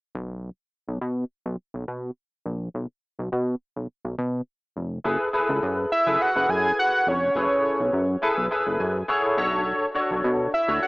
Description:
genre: early-eighties boogie funk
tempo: 104 BPM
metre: 4/4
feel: straight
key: F# minor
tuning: A4 = 443 Hz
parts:
  - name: chorused synth bass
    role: bass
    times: 0.1-10.8 s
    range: F1 to B2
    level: -27 LUFS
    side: equal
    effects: none
  - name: barky tine electric piano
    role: accompaniment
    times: 5.0-10.9 s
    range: D4 to G#5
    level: -24 LUFS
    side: left 1 dB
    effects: ensemble chorus
  - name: fat analog lead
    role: melody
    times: 5.9-10.9 s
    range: C#5 to G#5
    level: -22 LUFS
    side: equal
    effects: chorus, diffuse ambient delay
room: moderate lush hall reverb, RT60 1.9 s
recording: dreamy mix soaked in reverb, small speaker sound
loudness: -22 LUFS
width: side -24 dB against mid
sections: 0.0-5.1 A section; 5.1-10.9 B section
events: tine electric piano fill 8.5-9.7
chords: 0.1 N.C.; 5.1 F#m11; 9.4 Bm7

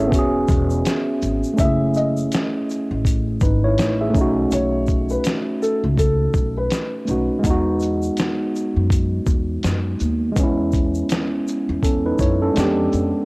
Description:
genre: lo-fi hip hop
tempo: 82 BPM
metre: 4/4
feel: swing 60% on 16ths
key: unclear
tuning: A4 = 440 Hz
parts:
  - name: mellow tine electric piano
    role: accompaniment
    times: 0.0-13.2 s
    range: G#3 to E5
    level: -20 LUFS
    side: equal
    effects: low-pass filter, cassette tape
  - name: upright bass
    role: bass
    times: 0.0-13.1 s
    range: E1 to F#2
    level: -22 LUFS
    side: equal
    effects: none
  - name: lo-fi sampler-style drum kit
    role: drums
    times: 0.1-13.1 s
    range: hi-hat, kick drum, shaker, snare drum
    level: -21 LUFS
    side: equal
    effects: vintage 12-bit sampler grit, cassette tape
  - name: egg shaker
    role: percussion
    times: 0.1-13.1 s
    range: none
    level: -39 LUFS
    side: left 3 dB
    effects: none
  - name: felt-muted upright piano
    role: melody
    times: 1.6-7.4 s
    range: A4 to E5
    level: -25 LUFS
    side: left 1 dB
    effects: low-pass filter, analog delay
room: light reverb, small room ambience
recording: home recording on cassette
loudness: -17 LUFS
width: side -25 dB against mid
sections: 0.0-1.6 A section; 1.6-13.2 B section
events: none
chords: 0.1 E69; 1.6 F#m7; 4.1 B7; 7.4 Emaj7; 10.4 Emaj13; 12.6 Fdim7

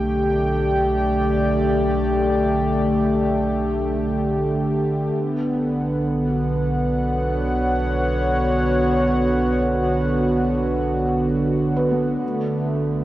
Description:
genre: ambient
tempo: free time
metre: none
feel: none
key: B minor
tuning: A4 = 440 Hz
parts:
  - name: warm analog pad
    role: sustained chords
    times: 0.0-13.0 s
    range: D3 to G5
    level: -19 LUFS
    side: equal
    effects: chorus
  - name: warm sub bass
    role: bass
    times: 0.0-13.0 s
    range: B1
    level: -27 LUFS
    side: equal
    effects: none
  - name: felt-muted upright piano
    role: arpeggios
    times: 11.8-13.0 s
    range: B3 to B4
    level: -25 LUFS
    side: equal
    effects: diffuse ambient delay
room: wet lush hall reverb, RT60 3.0 s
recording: worn, warbling old tape, cassette tape, warbly pitch drift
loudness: -18 LUFS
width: side -14 dB against mid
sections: 0.0-13.0 A section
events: none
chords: 0.0 Gsus2/B; 5.2 Bmadd9; 12.2 Gsus2/B (rootless)

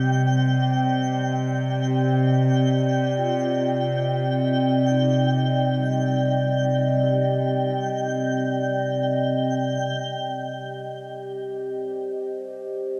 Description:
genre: ambient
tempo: free time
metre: none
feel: none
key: unclear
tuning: A4 = 438 Hz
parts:
  - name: warbly tape-like pad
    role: sustained chords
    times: 0.0-13.0 s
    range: C3 to G5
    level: -24 LUFS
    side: equal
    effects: chorus, built-in reverb
  - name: vibraphone with soft mallets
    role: arpeggios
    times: 0.0-13.0 s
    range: G3 to G5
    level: -37 LUFS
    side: equal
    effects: diffuse ambient delay
  - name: clear symphonic cello section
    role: bass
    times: 0.0-9.8 s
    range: C3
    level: -38 LUFS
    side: equal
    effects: none
  - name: twinkling granular texture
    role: texture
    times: 0.0-9.8 s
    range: G5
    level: -33 LUFS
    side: equal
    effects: built-in reverb
room: wet cathedral reverb, RT60 6.2 s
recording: in a vast, echoing space, cassette tape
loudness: -23 LUFS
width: mono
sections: 0.0-9.8 A section; 9.8-13.0 B section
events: fade-out on vibraphone 0.0-9.8; fade-out on cello section 0.0-9.8; filter sweep on ambient pad 0.0-9.8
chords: 0.0 Cmadd9

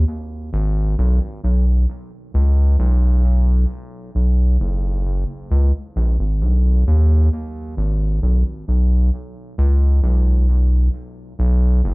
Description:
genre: reggae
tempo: 66 BPM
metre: 4/4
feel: straight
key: unclear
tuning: A4 = 441 Hz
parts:
  - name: round analog bass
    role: solo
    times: 0.0-11.9 s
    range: F#1 to D#2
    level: -15 LUFS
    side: equal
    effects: cassette tape, tape echo
room: moderate studio reverb, RT60 0.6 s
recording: home recording on cassette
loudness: -16 LUFS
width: side -27 dB against mid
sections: 0.0-11.9 A section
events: none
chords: none

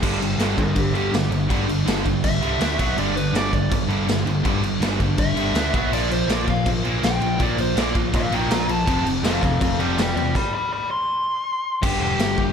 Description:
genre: punk rock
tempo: 163 BPM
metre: 4/4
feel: straight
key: unclear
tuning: A4 = 440 Hz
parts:
  - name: distorted electric guitar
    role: riff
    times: 0.0-12.5 s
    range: F2 to D4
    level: -26 LUFS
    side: left 11 dB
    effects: distortion
  - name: overdriven semi-hollow guitar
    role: riff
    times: 0.0-12.5 s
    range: F2 to Bb3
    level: -28 LUFS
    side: equal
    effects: none
  - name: tight distorted guitar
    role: riff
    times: 0.0-10.3 s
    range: F2 to D4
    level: -27 LUFS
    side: right 14 dB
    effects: distortion
  - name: overdriven picked electric bass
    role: bass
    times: 0.0-12.5 s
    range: E1 to E2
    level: -27 LUFS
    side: equal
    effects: none
  - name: raw garage drum kit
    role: drums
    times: 0.0-12.5 s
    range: crash cymbal, kick drum, snare drum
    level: -24 LUFS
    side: equal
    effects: none
  - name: dark smooth lead guitar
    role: melody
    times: 0.6-12.5 s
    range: B3 to C6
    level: -25 LUFS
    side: equal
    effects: overdrive, tape echo
room: little or no reverb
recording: none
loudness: -19 LUFS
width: side -7 dB against mid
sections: 0.0-11.8 A section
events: lead electric guitar solo 0.0-11.8; stop 10.4-11.8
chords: 0.0 G5; 2.6 D5; 2.8 B5; 3.0 G5; 5.6 D5; 5.7 B5; 5.9 Bb; 8.9 F; 10.4 N.C.; 11.8 G5

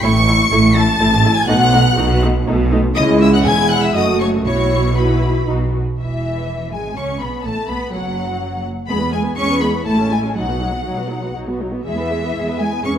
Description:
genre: quick classical-period movement for string orchestra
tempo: 122 BPM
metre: 3/4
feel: rubato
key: E major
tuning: A4 = 440 Hz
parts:
  - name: clear symphonic violin section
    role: melody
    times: 0.0-12.9 s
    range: E5 to C#7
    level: -23 LUFS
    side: left 4 dB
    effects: none
  - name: rich symphonic violin section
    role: second line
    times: 0.0-12.9 s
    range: B4 to C#6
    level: -22 LUFS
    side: left 2 dB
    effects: none
  - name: dark symphonic viola section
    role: accompaniment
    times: 0.0-13.0 s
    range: E3 to B4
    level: -20 LUFS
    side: equal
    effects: none
  - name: rich symphonic cello section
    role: bass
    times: 0.0-12.9 s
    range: E2 to C#4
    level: -20 LUFS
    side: right 2 dB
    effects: none
  - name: rich symphonic double bass section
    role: bass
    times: 0.0-13.0 s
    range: E1 to E2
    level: -20 LUFS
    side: right 1 dB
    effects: none
room: moderate scoring stage reverb, RT60 1.6 s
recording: none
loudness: -14 LUFS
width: side -9 dB against mid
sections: 0.0-6.0 A section; 6.0-13.0 B section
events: none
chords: 0.0 A; 1.5 B7; 3.0 C#m; 3.9 F#m; 4.5 Bsus4; 5.5 B5; 6.0 E; 7.5 B5; 8.9 E; 9.9 A; 10.4 B; 11.9 E

